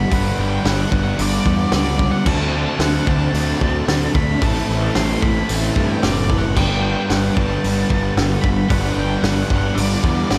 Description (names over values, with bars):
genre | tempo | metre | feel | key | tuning
rock, shoegaze and dream pop | 112 BPM | 4/4 | straight | G major | A4 = 440 Hz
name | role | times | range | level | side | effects
octave-fuzz lead guitar | melody | 0.0-10.4 s | D5 to C6 | -30 LUFS | equal | distortion, delay
biting overdriven guitar | riff | 0.0-10.4 s | A2 to B4 | -26 LUFS | equal | reverse reverb
sludgy distorted guitar | riff | 0.0-10.4 s | G2 to D4 | -28 LUFS | equal | none
thick fuzz guitar | riff | 0.0-10.4 s | G2 to D4 | -27 LUFS | equal | distortion, ensemble chorus
fuzz picked electric bass | bass | 0.0-10.4 s | F#1 to G2 | -24 LUFS | equal | overdrive
loose indie drum kit | drums | 0.1-10.4 s | crash cymbal, hi-hat, kick drum, snare drum | -24 LUFS | equal | none
room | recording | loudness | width
moderate plate reverb, RT60 1.8 s, small room ambience | dreamy mix soaked in reverb | -18 LUFS | mono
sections
0.0-10.4 A section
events
none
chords
0.0 G; 2.3 D7; 4.4 Am; 6.6 G